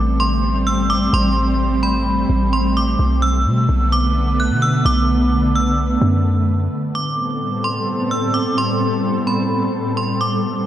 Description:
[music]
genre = hip hop, atmospheric cloud-rap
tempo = 129 BPM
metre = 4/4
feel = half-time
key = A dorian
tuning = A4 = 442 Hz
[part]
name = metallic FM bell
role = melody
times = 0.0-10.4 s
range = B5 to F#6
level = -22 LUFS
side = right 1 dB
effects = chorus, tape echo
[part]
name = ethereal airy pad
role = sustained chords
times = 0.0-10.7 s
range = A2 to B4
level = -19 LUFS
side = equal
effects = ensemble chorus, built-in reverb, tremolo
[part]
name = warm 808-style bass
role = bass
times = 0.0-6.7 s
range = A1 to B2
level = -18 LUFS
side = equal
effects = none
[sound]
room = moderate scoring stage reverb, RT60 1.9 s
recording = none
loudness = -15 LUFS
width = side -11 dB against mid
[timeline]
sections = 0.0-6.7 A section; 6.7-10.7 B section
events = none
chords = 0.0 Am9; 3.0 Bm7; 6.7 Am9

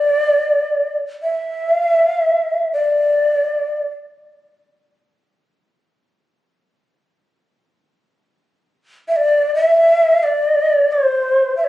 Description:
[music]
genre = japanese traditional, Japanese chamber music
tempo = free time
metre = none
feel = none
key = unclear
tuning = A4 = 442 Hz
[part]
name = mellow shakuhachi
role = solo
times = 0.0-3.9, 9.1-11.7 s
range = C5 to E5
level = -14 LUFS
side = equal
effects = none
[sound]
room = moderate recital hall reverb, RT60 1.6 s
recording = recorded on a phone in the room, studio ambience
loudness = -14 LUFS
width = side -15 dB against mid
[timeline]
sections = 0.0-11.7 A section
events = none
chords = none

